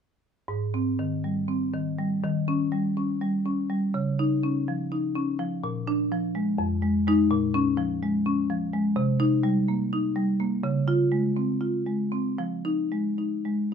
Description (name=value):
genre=classical, contemporary piece for solo marimba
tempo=223-260 BPM (eighths)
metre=7/8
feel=rubato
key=Ab major, F minor from 7.3 s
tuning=A4 = 440 Hz
part: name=marimba with medium hard mallets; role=solo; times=0.5-13.7 s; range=F2 to F4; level=-24 LUFS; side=equal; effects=none
room=light reverb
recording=minimal, uncompressed stereo recording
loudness=-24 LUFS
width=side -7 dB against mid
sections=0.5-13.7 A section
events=none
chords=0.5 Abmaj7; 2.2 Eb7; 3.9 Dbadd9; 5.6 Bb7; 6.6 Fm7; 7.3 Bbm7; 9.0 Cm7; 10.6 Dbmaj7; 12.4 Fm7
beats=| 0.49 0.74 0.99 1.24 1.49 1.74 1.98 | 2.23 2.48 2.72 2.96 3.21 3.45 3.69 | 3.94 4.18 4.43 4.67 4.92 5.16 5.40 | 5.64 5.88 6.12 6.36 6.59 6.83 7.06 | 7.30 7.54 7.78 8.02 8.26 8.49 8.72 | 8.96 9.19 9.43 9.68 9.92 10.15 10.39 | 10.63 10.88 11.12 11.36 11.61 11.86 12.12 | 12.39 12.65 12.92 13.18 13.45 13.71